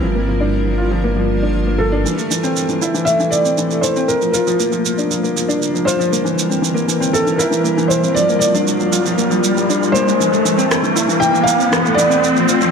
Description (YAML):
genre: piano and strings electronica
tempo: 118 BPM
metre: 4/4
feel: straight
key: G dorian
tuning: A4 = 444 Hz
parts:
  - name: granular cloud pad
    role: sustained chords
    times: 0.0-12.7 s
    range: E3 to D5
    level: -23 LUFS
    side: right 1 dB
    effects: built-in reverb
  - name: warm upright piano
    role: riff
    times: 0.0-12.7 s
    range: E3 to F4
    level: -18 LUFS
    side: left 1 dB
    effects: digital delay
  - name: dark detuned saw bass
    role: bass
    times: 0.0-2.0 s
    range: G1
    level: -19 LUFS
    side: equal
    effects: none
  - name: felt-muted upright piano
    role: melody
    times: 1.8-12.7 s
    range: A4 to G5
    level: -19 LUFS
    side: equal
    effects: digital delay
  - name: electronic shaker and rim click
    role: drums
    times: 2.1-12.7 s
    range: none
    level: -22 LUFS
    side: right 6 dB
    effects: low-pass filter on perc, low-pass filter on snare, low-pass filter on room
  - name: riser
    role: sound effects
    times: 4.3-12.7 s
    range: none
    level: -21 LUFS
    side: equal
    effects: none
room: moderate lush hall reverb, RT60 1.8 s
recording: none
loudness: -14 LUFS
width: side -6 dB against mid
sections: 0.0-2.1 A section; 2.1-12.7 B section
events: build-up 2.1-12.7; filter sweep on ambient pad 2.1-12.7; riser 4.3-12.7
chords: 0.0 Gm7; 2.1 Amadd11; 4.1 Gm7; 6.1 C7; 8.2 Gm7; 10.2 Fmaj7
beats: | 0.02 0.53 1.04 1.55 | 2.06 2.57 3.07 3.58 | 4.09 4.60 5.11 5.62 | 6.12 6.63 7.14 7.65 | 8.16 8.67 9.18 9.69 | 10.19 10.70 11.21 11.72 | 12.23